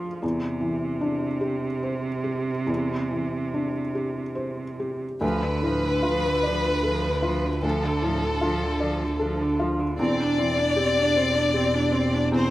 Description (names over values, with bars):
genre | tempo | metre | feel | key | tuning
neoclassical piano and strings | 47-52 BPM (dotted quarters) | 6/8 | rubato | D dorian | A4 = 441 Hz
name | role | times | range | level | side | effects
clear cello | second line | 0.0-12.5 s | C3 to D4 | -28 LUFS | right 4 dB | none
felt-muted upright piano | accompaniment | 0.0-12.5 s | D2 to D5 | -28 LUFS | left 1 dB | slapback echo
rich chamber violin section | melody | 5.2-12.5 s | A4 to D5 | -25 LUFS | left 2 dB | none
concert harp | arpeggios | 5.2-12.5 s | C4 to D5 | -32 LUFS | equal | none
rich double bass | bass | 5.2-12.5 s | E1 to D2 | -29 LUFS | equal | none
room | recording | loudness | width
little or no reverb | recorded outdoors, with no room sound | -22 LUFS | side -15 dB against mid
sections
0.0-5.2 A section; 5.2-12.5 B section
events
none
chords
0.2 Cadd9/E; 5.2 Dm; 10.0 Cadd9/E